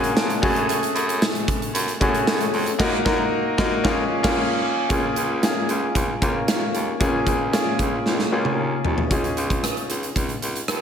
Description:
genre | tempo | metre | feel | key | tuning
1980s-style pop | 114 BPM | 4/4 | straight | Db major | A4 = 440 Hz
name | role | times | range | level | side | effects
bright grand piano | accompaniment | 0.0-10.8 s | A3 to A5 | -23 LUFS | left 1 dB | slapback echo
clear baritone saxophone | bass | 0.0-10.8 s | Db2 to Ab2 | -27 LUFS | right 1 dB | none
big rock drum kit | drums | 0.0-10.8 s | crash cymbal, hi-hat, kick drum, rim click, snare drum, tambourine, toms | -23 LUFS | equal | none
room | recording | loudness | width
wet lush hall reverb, RT60 1.8 s, small room ambience | big arena sound | -19 LUFS | side -8 dB against mid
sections
0.0-4.9 A section; 4.9-9.1 B section; 9.1-10.8 C section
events
grand piano fill 0.0-0.7; band accent 2.8-4.9; drum fill 8.1-9.1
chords
0.4 Gbmadd9; 2.8 Ebm/Gb; 3.8 Db6; 9.1 Dbadd9

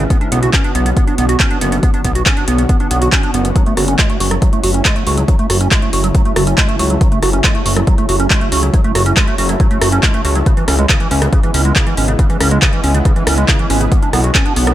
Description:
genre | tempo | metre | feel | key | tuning
uplifting trance | 139 BPM | 4/4 | straight | F# minor | A4 = 440 Hz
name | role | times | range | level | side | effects
liquid acid bass | arpeggios | 0.0-14.7 s | C#3 to F#4 | -18 LUFS | right 3 dB | analog chorus, cassette tape, sidechain pumping, digital delay
fat analog bass | bass | 0.0-14.7 s | F#1 to C#2 | -16 LUFS | equal | sidechain pumping
big-room dance drum kit | drums | 0.1-14.7 s | handclaps, hi-hat, rim click | -18 LUFS | equal | none
electronic kick drum | drums | 0.1-14.4 s | none | -14 LUFS | equal | none
room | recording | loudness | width
light reverb | none | -11 LUFS | side -13 dB against mid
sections
0.0-14.7 A section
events
none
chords
0.1 Bm; 3.6 F#m7; 10.5 C#m7; 13.9 Bm

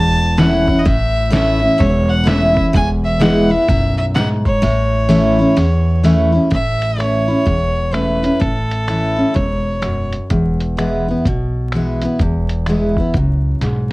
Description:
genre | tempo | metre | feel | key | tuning
honky-tonk and classic country | 127 BPM | 4/4 | swing 63% on 8ths | A major | A4 = 440 Hz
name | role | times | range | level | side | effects
clear fiddle | melody | 0.0-10.1 s | A4 to A5 | -20 LUFS | equal | cassette tape, plate reverb
picked steel-string acoustic guitar | accompaniment | 0.0-13.9 s | E2 to E4 | -16 LUFS | equal | plate reverb
upright bass | bass | 0.0-13.9 s | E1 to E2 | -19 LUFS | equal | none
lo-fi sampler-style drum kit | drums | 0.4-13.8 s | finger snaps, hi-hat, kick drum, snare drum | -20 LUFS | equal | cassette tape
room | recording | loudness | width
light reverb | home recording on cassette, vinyl crackle | -13 LUFS | side -21 dB against mid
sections
0.0-6.5 A section; 6.5-13.9 B section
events
kick and snare drop out 4.6-6.5; drum fill 13.6-13.9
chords
0.0 A; 2.7 E; 4.6 A; 10.3 E

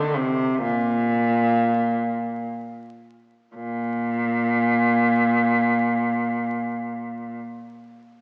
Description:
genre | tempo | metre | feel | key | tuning
classical, baroque-style suite movement for unaccompanied cello | free time | none | none | Bb major | A4 = 442 Hz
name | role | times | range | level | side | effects
clear cello | solo | 0.0-7.4 s | Bb2 to D3 | -23 LUFS | equal | none
room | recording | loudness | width
wet concert hall reverb, RT60 2.1 s | recorded in a church or concert hall, vinyl crackle, small speaker sound | -22 LUFS | mono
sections
0.0-3.6 A section; 3.6-6.6 B section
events
slowing down 0.0-3.6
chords
none

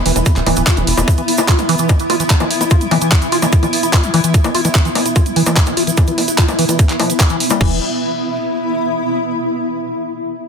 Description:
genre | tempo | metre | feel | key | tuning
psychedelic trance | 147 BPM | 4/4 | straight | unclear | A4 = 442 Hz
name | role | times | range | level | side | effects
granular cloud pad | texture | 0.0-9.2 s | B3 to B5 | -19 LUFS | equal | built-in reverb, sidechain pumping
liquid acid bass | riff | 0.1-7.8 s | E3 to F4 | -19 LUFS | moving between left 6 dB and right 5 dB | phaser, auto-pan, sidechain pumping, digital delay
tight sequencer bass | bass | 0.1-1.0, 7.6-7.8 s | D1 to E1 | -18 LUFS | equal | tube saturation
garage drum kit | drums | 0.1-7.7 s | bongos, crash cymbal, handclaps, hi-hat | -18 LUFS | left 2 dB | overdrive
tube shaker | percussion | 0.2-7.6 s | none | -26 LUFS | right 7 dB | none
electronic kick drum | drums | 0.3-7.7 s | none | -12 LUFS | equal | overdrive
room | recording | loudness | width
light reverb, digital ambience | dense, heavily limited modern master | -12 LUFS | side -6 dB against mid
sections
0.0-7.6 A section; 7.6-9.2 B section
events
filter sweep on acid bass 0.0-7.6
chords
0.0 E5

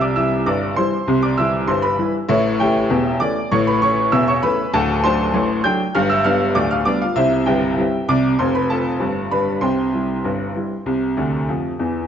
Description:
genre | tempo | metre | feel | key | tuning
ragtime piano | 98 BPM | 2/4 | straight | C major | A4 = 440 Hz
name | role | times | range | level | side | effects
clear upright piano | solo | 0.0-12.0 s | D1 to G6 | -16 LUFS | equal | none
room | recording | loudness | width
wet plate reverb, RT60 2.5 s | heard from further back in the room, nothing above 7.6 kHz | -16 LUFS | side -8 dB against mid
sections
0.0-12.1 A section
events
upright piano fill 11.2-12.1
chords
0.0 C; 2.3 A7; 4.7 D7; 5.9 G7; 7.2 C; 8.4 F; 9.0 G; 9.6 C

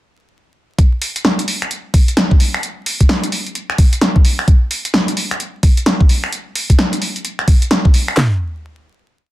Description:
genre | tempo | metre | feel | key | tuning
UK garage | 130 BPM | 4/4 | swing 62% on 16ths | none | none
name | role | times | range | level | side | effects
garage drum kit | drums | 0.8-8.3 s | handclaps, kick drum, snare drum, toms | -10 LUFS | equal | none
punchy analog drum machine | drums | 0.8-8.2 s | finger snaps, hi-hat, snare drum | -17 LUFS | equal | none
room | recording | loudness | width
light reverb | dense, heavily limited modern master, vinyl crackle | -13 LUFS | side -16 dB against mid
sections
0.8-8.2 drop; 8.2-9.3 final hit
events
drop 0.8-8.2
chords
none

